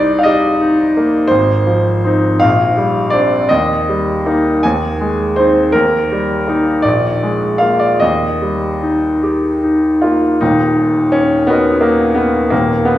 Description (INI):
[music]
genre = classical, romantic character piece for solo piano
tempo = 49-60 BPM (dotted quarters)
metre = 6/8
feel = rubato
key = Eb major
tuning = A4 = 440 Hz
[part]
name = clear grand piano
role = solo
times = 0.0-13.0 s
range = Eb1 to Ab5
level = -11 LUFS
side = equal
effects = none
[sound]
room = wet recital hall reverb, RT60 1.8 s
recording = heard from further back in the room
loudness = -11 LUFS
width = side -13 dB against mid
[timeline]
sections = 0.0-10.4 A section; 10.4-13.0 B section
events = none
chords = 0.0 Cm7; 1.3 Fm7/Ab; 2.4 Bb69; 3.5 Eb; 4.6 Ab/Eb; 5.7 Eb; 6.8 Bb7; 8.0 Eb; 10.4 Ebm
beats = 0.26 | 1.30 2.42 | 3.49 4.63 | 5.73 6.84 | 8.01 9.22 | 10.41 11.47 | 12.52